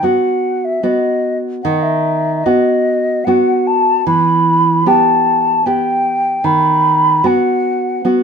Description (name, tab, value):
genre	romantic duo for flute and classical guitar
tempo	75 BPM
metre	3/4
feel	rubato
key	unclear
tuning	A4 = 440 Hz
part	mellow hollow concert flute	melody	0.0-8.1 s	D#5 to B5	-14 LUFS	left 1 dB	none
part	nylon-string guitar	accompaniment	0.0-8.2 s	D#3 to G4	-15 LUFS	right 2 dB	none
room	moderate studio reverb, RT60 0.8 s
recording	minimal, uncompressed stereo recording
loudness	-12 LUFS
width	side -6 dB against mid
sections	0.0-8.2 A section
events	none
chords	0.0 B; 4.1 Em; 6.4 B/D#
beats	0.04 0.84 | 1.65 2.45 3.27 | 4.07 4.86 5.65 | 6.43 7.23 8.04